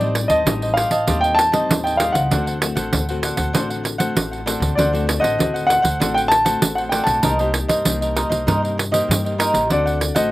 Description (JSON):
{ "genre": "samba and choro", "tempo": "97 BPM", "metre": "4/4", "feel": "straight", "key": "unclear", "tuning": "A4 = 440 Hz", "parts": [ { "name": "warm grand piano", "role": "melody", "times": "0.0-10.3 s", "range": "D5 to A5", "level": "-19 LUFS", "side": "equal", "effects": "slapback echo" }, { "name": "cavaquinho", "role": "accompaniment", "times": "0.0-10.3 s", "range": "D4 to A5", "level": "-23 LUFS", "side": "right 1 dB", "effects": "none" }, { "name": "nylon-string guitar", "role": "accompaniment", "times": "0.0-10.3 s", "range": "A2 to G4", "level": "-26 LUFS", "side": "left 4 dB", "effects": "none" }, { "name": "upright bass", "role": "bass", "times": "0.0-10.3 s", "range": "A1 to G2", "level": "-25 LUFS", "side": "equal", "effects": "none" }, { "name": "pandeiro", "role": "percussion", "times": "0.0-10.3 s", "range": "none", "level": "-22 LUFS", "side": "right 2 dB", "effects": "none" } ], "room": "little or no reverb", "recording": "recorded outdoors, with no room sound", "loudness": "-16 LUFS", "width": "side -17 dB against mid", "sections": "0.0-10.3 A section", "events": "none", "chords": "0.0 Am7b5; 2.3 D7; 7.2 Cm7; 9.7 D7", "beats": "0.46 1.08 1.70 | 2.31 2.93 3.54 4.16 | 4.78 5.39 6.01 6.63 | 7.24 7.86 8.47 9.09 | 9.71" }